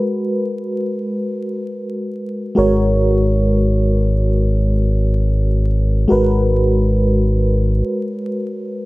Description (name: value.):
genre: R&B, neo-soul.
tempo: free time.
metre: none.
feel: none.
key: G# minor.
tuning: A4 = 441 Hz.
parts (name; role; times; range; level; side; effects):
FM electric piano with tremolo; accompaniment; 0.0-8.9 s; G#3 to C#5; -18 LUFS; equal; none.
rubbery square bass; bass; 2.6-7.8 s; G#1; -16 LUFS; equal; none.
room: digital ambience.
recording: vinyl crackle.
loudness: -15 LUFS.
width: side -20 dB against mid.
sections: 0.0-8.9 A section.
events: break 7.9-8.9.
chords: 0.0 G#m9.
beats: free time.